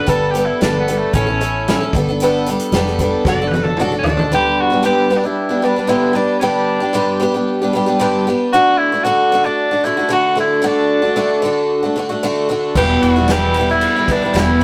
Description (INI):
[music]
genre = folk rock and heartland rock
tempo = 114 BPM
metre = 4/4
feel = straight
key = G major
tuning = A4 = 439 Hz
[part]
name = bright tenor saxophone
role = melody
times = 0.0-14.6 s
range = A3 to D5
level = -20 LUFS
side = equal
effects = none
[part]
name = picked twelve-string acoustic guitar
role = accompaniment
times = 0.0-14.6 s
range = E2 to A4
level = -18 LUFS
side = equal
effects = none
[part]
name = fingered electric bass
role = bass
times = 0.1-4.1, 12.8-14.6 s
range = E1 to A1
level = -24 LUFS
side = equal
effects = none
[part]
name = natural country drum kit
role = drums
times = 0.1-4.3, 12.8-14.6 s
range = crash cymbal, hi-hat, kick drum, ride cymbal, snare drum, toms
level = -22 LUFS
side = equal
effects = none
[sound]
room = moderate studio reverb, RT60 0.6 s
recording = rough rehearsal-room recording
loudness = -16 LUFS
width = mono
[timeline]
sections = 0.0-4.3 A section; 4.3-14.6 B section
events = tenor saxophone solo 0.0-4.3; drum fill 3.3-4.3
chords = 0.1 Gadd9; 1.1 A; 1.9 Gadd9; 3.3 D/F#; 4.3 G; 8.5 D; 12.8 Em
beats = | 0.08 0.61 1.14 1.67 | 2.20 2.72 3.25 3.78 | 4.31 4.84 5.37 5.89 | 6.42 6.95 7.48 8.01 | 8.54 9.06 9.59 10.12 | 10.65 11.18 11.71 12.23 | 12.76 13.29 13.82 14.35